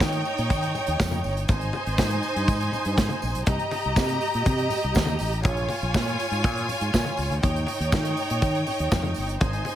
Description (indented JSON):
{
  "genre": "disco",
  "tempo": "121 BPM",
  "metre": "4/4",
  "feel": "straight",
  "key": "unclear",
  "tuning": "A4 = 440 Hz",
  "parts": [
    { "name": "clear studio string section", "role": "second line", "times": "0.0-9.8 s", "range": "Eb4 to Bb5", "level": "-27 LUFS", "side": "equal", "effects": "none" },
    { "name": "fingered electric bass", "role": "bass", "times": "0.0-9.6 s", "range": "G1 to Eb3", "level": "-27 LUFS", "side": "equal", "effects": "none" },
    { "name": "modern studio drum kit", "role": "drums", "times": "0.0-9.8 s", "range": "hi-hat, kick drum, snare drum", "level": "-26 LUFS", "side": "equal", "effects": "none" },
    { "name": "congas", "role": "percussion", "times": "0.0-9.8 s", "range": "none", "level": "-35 LUFS", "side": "left 3 dB", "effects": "none" },
    { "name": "tambourine", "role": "percussion", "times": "0.0-9.3 s", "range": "none", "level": "-43 LUFS", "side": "right 8 dB", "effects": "none" }
  ],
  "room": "light reverb, small room ambience",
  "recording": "none",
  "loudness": "-22 LUFS",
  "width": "side -11 dB against mid",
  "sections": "0.0-9.8 A section",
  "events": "none",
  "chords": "0.0 Eb7; 1.5 Ab; 3.5 Cm7; 5.4 Bbm7; 7.4 Eb7"
}